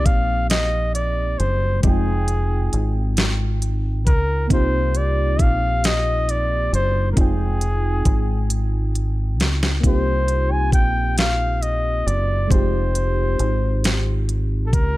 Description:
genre	slow six-eight R&B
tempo	45 BPM (dotted quarters)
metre	6/8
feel	straight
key	F dorian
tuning	A4 = 440 Hz
part	breathy flugelhorn	melody	0.0-15.0 s	Ab4 to Ab5	-24 LUFS	equal	none
part	mellow FM electric piano	accompaniment	0.0-15.0 s	F3 to G5	-28 LUFS	equal	chorus
part	deep dub fingered electric bass	bass	0.0-15.0 s	F1 to Db2	-21 LUFS	equal	none
part	smooth R&B drum kit	drums	0.1-14.9 s	hi-hat, kick drum, snare drum	-19 LUFS	equal	none
room	little or no reverb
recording	none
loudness	-18 LUFS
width	side -18 dB against mid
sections	0.0-15.0 A section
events	drum fill 8.5-9.8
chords	0.0 Cm7; 1.8 Fm7; 4.5 Cm7; 7.2 Fm7; 9.8 Cm7; 12.5 Fm7

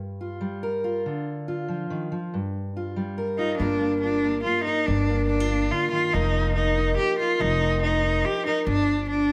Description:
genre	indie folk with a building arrangement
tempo	142 BPM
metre	3/4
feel	straight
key	G minor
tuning	A4 = 440 Hz
part	fingerpicked steel-string acoustic guitar	accompaniment	0.0-9.3 s	G2 to Bb4	-30 LUFS	equal	none
part	rich cello	melody	3.4-9.3 s	D4 to G4	-26 LUFS	equal	slapback echo
part	upright bass	bass	3.6-9.3 s	F1 to G1	-29 LUFS	equal	none
room	moderate large studio reverb, RT60 0.9 s, studio reverb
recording	none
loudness	-25 LUFS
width	mono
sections	0.0-3.6 A section; 3.6-9.3 B section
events	build-up 3.6-9.3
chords	0.0 Gm7; 1.0 Dm; 2.3 Gm7; 6.1 F7sus4; 8.7 G5

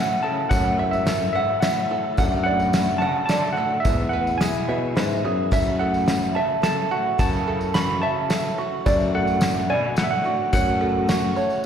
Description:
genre	indie folk with a building arrangement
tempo	108 BPM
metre	3/4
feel	straight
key	F# minor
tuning	A4 = 440 Hz
part	tine electric piano	melody	0.0-11.6 s	E5 to B5	-24 LUFS	right 3 dB	medium stereo tremolo, slapback echo
part	warm cello	second line	0.0-11.6 s	G#2 to E3	-30 LUFS	left 2 dB	slapback echo
part	picked twelve-string acoustic guitar	accompaniment	0.0-11.6 s	F#2 to A4	-31 LUFS	left 7 dB	slapback echo
part	warm upright piano	accompaniment	0.0-11.7 s	F#1 to A5	-36 LUFS	left 1 dB	none
part	tonewheel organ	sustained chords	0.0-11.7 s	B2 to A4	-34 LUFS	equal	slow rotary speaker, overdrive, chorus vibrato
part	open-back banjo	arpeggios	0.0-11.7 s	F#4 to F#5	-28 LUFS	right 4 dB	slapback echo, digital delay
part	picked electric bass	bass	0.5-11.4 s	E2 to B2	-25 LUFS	left 2 dB	none
part	cloth-damped thuddy drum kit	drums	0.5-11.2 s	kick drum, ride cymbal, snare drum	-26 LUFS	left 1 dB	slapback echo
part	tambourine	percussion	0.5-11.6 s	none	-38 LUFS	left 2 dB	slapback echo
room	moderate club reverb, RT60 0.8 s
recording	live gig heard through the venue's PA, recital hall reverb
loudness	-19 LUFS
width	side -8 dB against mid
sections	0.0-11.7 A section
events	upright piano fill 11.1-11.7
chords	0.0 F#m7; 2.2 D/F#; 3.9 E; 5.5 F#m7; 8.9 D/F#; 10.5 F#m

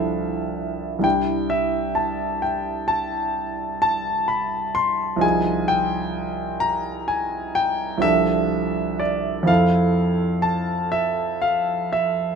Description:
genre	classical, impressionist solo piano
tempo	40-44 BPM (dotted quarters)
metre	9/8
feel	rubato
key	C major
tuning	A4 = 440 Hz
part	clear concert grand piano	solo	0.0-12.4 s	C2 to C6	-20 LUFS	equal	none
room	light reverb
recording	close, detailed microphones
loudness	-20 LUFS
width	side -6 dB against mid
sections	0.0-12.4 A section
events	none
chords	0.0 Dm9/C; 1.0 Cadd9; 5.2 Fm9/C; 8.0 G9sus4/C; 9.5 Fmaj7

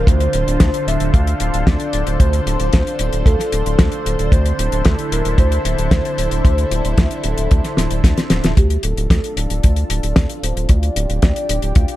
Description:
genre	italo disco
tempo	113 BPM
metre	4/4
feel	straight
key	D minor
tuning	A4 = 439 Hz
part	soft octave-layered synth lead	melody	0.0-12.0 s	G4 to F5	-24 LUFS	equal	chorus, phaser, cassette tape, tape echo
part	lush unison pad	sustained chords	0.0-12.0 s	D3 to C5	-24 LUFS	equal	chorus, phaser, vintage 12-bit sampler grit
part	round analog bass	bass	0.0-11.9 s	D1 to D2	-19 LUFS	equal	none
part	damped 70s drum kit	drums	0.1-12.0 s	hi-hat, snare drum	-20 LUFS	left 1 dB	none
part	kick drum	drums	0.1-11.9 s	none	-14 LUFS	equal	none
room	small room ambience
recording	dark, warm production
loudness	-14 LUFS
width	side -15 dB against mid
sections	0.0-8.6 A section; 8.6-12.0 B section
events	drum fill 7.8-8.6; filter sweep on soft synth lead 8.6-12.0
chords	0.1 F/D; 4.3 Am/D; 8.6 Dm

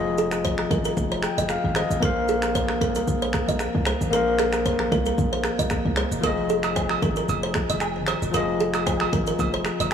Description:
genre	afrobeats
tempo	114 BPM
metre	4/4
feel	swing 55% on 16ths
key	F minor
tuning	A4 = 442 Hz
part	bell-like tine electric piano	accompaniment	0.0-9.9 s	F3 to G5	-25 LUFS	left 4 dB	none
part	hard-hitting 808-style bass	bass	0.0-9.9 s	Eb1 to C2	-28 LUFS	equal	none
part	kalimba	riff	0.2-9.9 s	Ab4 to Eb5	-27 LUFS	right 4 dB	tape echo
part	afro-pop drum kit	drums	0.2-9.9 s	finger snaps, kick drum, rim click, shaker	-28 LUFS	equal	soft clipping on snare
part	agogo bells and woodblock	percussion	6.2-9.9 s	none	-29 LUFS	right 8 dB	none
room	light reverb, small room ambience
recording	blown-out, overdriven recording, overdrive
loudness	-21 LUFS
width	side -8 dB against mid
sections	0.0-9.9 A section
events	tine electric piano fill 1.0-2.0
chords	0.0 Fm7

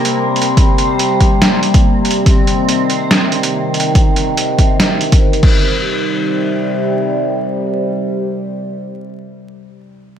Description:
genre	deep dubstep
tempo	142 BPM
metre	4/4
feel	swing 55% on 16ths, half-time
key	C minor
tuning	A4 = 440 Hz
part	overtone-sweeping drone	sustained chords	0.0-9.0 s	C3 to G3	-16 LUFS	equal	chorus, built-in reverb
part	backwards swelling texture	texture	0.0-5.7 s	Bb3 to C4	-22 LUFS	equal	built-in reverb
part	trip hop sampler-style drum kit	drums	0.1-5.5 s	crash cymbal, hi-hat, snare drum	-17 LUFS	right 1 dB	none
part	electronic kick drum	drums	0.6-5.5 s	none	-11 LUFS	equal	overdrive
room	moderate echo chamber reverb, RT60 1.4 s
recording	vinyl crackle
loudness	-11 LUFS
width	side -9 dB against mid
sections	0.0-5.6 A section; 5.6-9.0 B section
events	none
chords	0.0 Cm; 5.4 C5

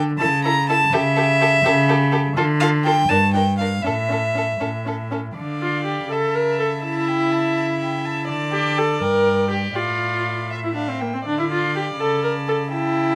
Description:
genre	quick classical-period movement for string quartet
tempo	82 BPM (dotted quarters)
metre	6/8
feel	straight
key	unclear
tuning	A4 = 445 Hz
part	rich violin	melody	0.0-13.2 s	E5 to Bb5	-25 LUFS	equal	none
part	warm violin	second line	0.0-13.2 s	A4 to G5	-30 LUFS	equal	none
part	rich viola	accompaniment	0.0-13.2 s	Bb3 to Bb4	-25 LUFS	equal	none
part	rich cello	bass	0.0-13.2 s	G2 to D3	-25 LUFS	equal	none
room	little or no reverb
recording	close, detailed microphones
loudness	-20 LUFS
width	mono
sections	0.0-5.4 A section; 5.4-13.2 A section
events	none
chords	0.2 A/C#; 0.9 A7/C#; 2.4 Dm; 3.1 Gm; 3.9 A; 5.4 Dm; 6.1 A/C#; 6.8 A7/C#; 8.3 D5; 9.0 Gm; 9.8 Dm/A; 10.5 A5; 11.3 Dm; 12.0 A/C#

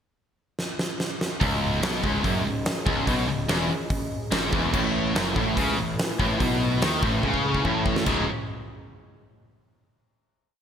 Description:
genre	hard rock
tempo	144 BPM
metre	4/4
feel	straight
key	C# minor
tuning	A4 = 440 Hz
part	huge arena drum kit	drums	0.6-8.2 s	crash cymbal, hi-hat, kick drum, snare drum	-27 LUFS	equal	gated reverb
part	dark analog pad	sustained chords	1.4-8.3 s	A3 to D#5	-36 LUFS	equal	chorus
part	cranked stack guitar	riff	1.4-8.2 s	C#2 to D#3	-29 LUFS	left 8 dB	overdrive
part	distorted electric guitar	riff	1.4-8.2 s	C#2 to D#3	-30 LUFS	right 8 dB	distortion
part	heavy high-gain guitar	riff	1.4-8.2 s	C#2 to D#3	-29 LUFS	right 1 dB	distortion
part	fuzz picked electric bass	bass	1.4-8.3 s	C#1 to D#2	-30 LUFS	equal	overdrive
room	moderate lush hall reverb, RT60 1.9 s, small room ambience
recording	bright 1980s-style digital production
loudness	-22 LUFS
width	side -8 dB against mid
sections	0.0-1.4 pickup bar; 1.4-8.1 riff; 8.1-9.7 final chord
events	drum fill 0.6-1.4, 7.2-8.1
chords	0.0 N.C.; 1.4 C#m; 4.7 A5; 8.1 C#5

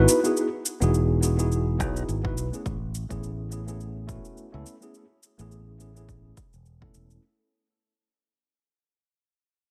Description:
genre	sunset chillout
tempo	105 BPM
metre	4/4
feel	swing 56% on 16ths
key	unclear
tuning	A4 = 439 Hz
part	tine electric piano	accompaniment	0.0-7.2 s	A3 to B4	-29 LUFS	equal	overdrive, delay
part	fingered electric bass	bass	0.0-7.2 s	E1 to C#2	-28 LUFS	equal	none
part	cabasa	drums	0.1-7.2 s	none	-32 LUFS	equal	overdrive, small room ambience
part	electronic kick drum	drums	1.8-6.9 s	none	-38 LUFS	equal	overdrive, small room ambience
room	light reverb, digital ambience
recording	none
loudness	-27 LUFS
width	mono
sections	0.0-7.2 A section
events	fade-out 0.0-7.2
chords	0.0 Emaj7; 2.7 Amaj7

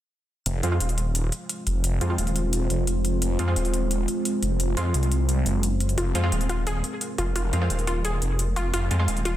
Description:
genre	dark technical drum and bass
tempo	174 BPM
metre	4/4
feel	straight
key	F minor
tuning	A4 = 441 Hz
part	deep dark ambient pad	sustained chords	1.3-9.4 s	Ab3 to C5	-30 LUFS	right 1 dB	chorus, built-in reverb
part	phased detuned saw bass	bass	0.5-9.4 s	Eb1 to F2	-24 LUFS	equal	phaser
part	electronic hi-hat	drums	0.5-9.3 s	none	-30 LUFS	left 1 dB	studio reverb
part	orchestra-hit-like synth stab	stabs	0.6-9.1 s	Ab3 to F4	-33 LUFS	right 2 dB	built-in reverb, dub echo
part	wide unison pluck	arpeggios	6.0-9.3 s	F4 to Ab4	-30 LUFS	left 1 dB	dub echo
room	little or no reverb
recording	dense, heavily limited modern master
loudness	-22 LUFS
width	side -13 dB against mid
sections	0.5-9.4 A section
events	filter sweep on synth stab 0.5-9.4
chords	0.5 Fm

